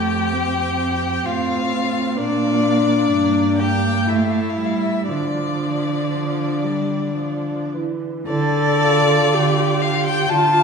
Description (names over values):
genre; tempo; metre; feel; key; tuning
classical, slow romantic movement for string quartet; 54-66 BPM; 3/4; rubato; D minor; A4 = 440 Hz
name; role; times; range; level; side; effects
muted violin; melody; 0.0-10.6 s; D5 to A5; -23 LUFS; left 4 dB; none
muted violin; second line; 0.0-10.6 s; D4 to G4; -22 LUFS; left 4 dB; none
muted viola; accompaniment; 0.0-10.6 s; E3 to A4; -22 LUFS; right 2 dB; none
muted cello; bass; 0.0-10.6 s; F2 to D3; -23 LUFS; right 4 dB; none
room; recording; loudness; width
wet recital hall reverb, RT60 1.6 s; heard from further back in the room; -17 LUFS; side -5 dB against mid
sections
0.0-8.3 A section; 8.3-10.6 B section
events
none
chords
0.0 F; 2.2 Bb; 3.1 Gm; 4.1 A5; 5.1 Dm